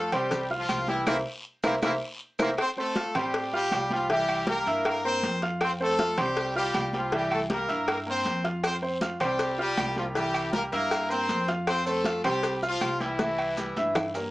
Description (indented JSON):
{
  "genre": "latin, salsa",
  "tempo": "158 BPM",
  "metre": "4/4",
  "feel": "straight",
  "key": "F major",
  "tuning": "A4 = 440 Hz",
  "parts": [
    { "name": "brilliant horn section", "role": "melody", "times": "0.0-14.3 s", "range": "E3 to C5", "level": "-28 LUFS", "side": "equal", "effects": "none" },
    { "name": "clear grand piano", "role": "accompaniment", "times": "0.0-14.3 s", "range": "E3 to F6", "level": "-30 LUFS", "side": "right 1 dB", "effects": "none" },
    { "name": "upright bass", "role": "bass", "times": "0.0-14.3 s", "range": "C2 to A2", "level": "-36 LUFS", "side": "equal", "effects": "none" },
    { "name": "agogo bells and timbales", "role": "percussion", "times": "0.1-14.2 s", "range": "none", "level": "-34 LUFS", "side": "right 2 dB", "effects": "none" },
    { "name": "claves", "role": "percussion", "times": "0.1-14.1 s", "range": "none", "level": "-40 LUFS", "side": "equal", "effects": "none" },
    { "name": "congas", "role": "percussion", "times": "0.1-14.0 s", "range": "none", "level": "-35 LUFS", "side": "equal", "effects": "none" },
    { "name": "cowbell", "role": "percussion", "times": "0.1-14.1 s", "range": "none", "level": "-34 LUFS", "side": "left 2 dB", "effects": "none" },
    { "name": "guiro", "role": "percussion", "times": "0.1-14.3 s", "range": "none", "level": "-43 LUFS", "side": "left 1 dB", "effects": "none" },
    { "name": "maracas", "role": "percussion", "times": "0.1-2.5, 8.6-14.3 s", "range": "none", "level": "-46 LUFS", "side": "right 2 dB", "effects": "none" }
  ],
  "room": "moderate studio ambience, RT60 0.4 s",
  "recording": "small speaker sound",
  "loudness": "-25 LUFS",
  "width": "side -18 dB against mid",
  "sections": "0.0-2.6 A section; 2.6-14.3 A section",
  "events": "band accent 1.1-2.6; drum fill 1.8-2.6, 13.2-14.3",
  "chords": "0.0 Fsus2; 1.1 C7; 2.6 Fadd9; 4.1 C7; 5.6 Fadd9; 7.1 C7; 8.6 Fsus2; 10.2 C7; 11.7 Fadd9; 13.2 C7"
}